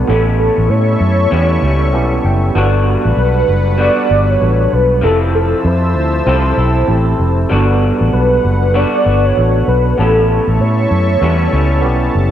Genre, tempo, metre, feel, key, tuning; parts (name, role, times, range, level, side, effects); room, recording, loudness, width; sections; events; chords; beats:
indie pop, bedroom pop; 97 BPM; 4/4; swing 60% on 16ths; G lydian; A4 = 440 Hz
warm velvety synth lead; melody; 0.0-12.1 s; A4 to D5; -16 LUFS; equal; analog chorus, tape echo
electric guitar through a small old amp; accompaniment; 0.0-12.3 s; A2 to A4; -19 LUFS; left 1 dB; analog chorus, vibrato effect
tine electric piano; accompaniment; 0.0-12.3 s; B3 to A5; -21 LUFS; right 3 dB; overdrive, fast stereo tremolo, cassette tape
warm analog pad; sustained chords; 0.0-12.3 s; A4 to E6; -24 LUFS; equal; chorus
vintage muted fingered electric bass; bass; 0.0-12.3 s; F1 to A2; -14 LUFS; equal
light reverb; -11 LUFS; side -10 dB against mid
0.0-12.3 A section
tine electric piano fill 1.6-2.6
0.1 A7; 2.6 Gmaj7; 5.0 Fmaj7; 7.5 Gmaj7; 10.0 A7
| 0.08 0.70 1.32 1.94 | 2.56 3.18 3.80 4.42 | 5.03 5.65 6.27 6.89 | 7.51 8.13 8.74 9.36 | 9.98 10.60 11.22 11.84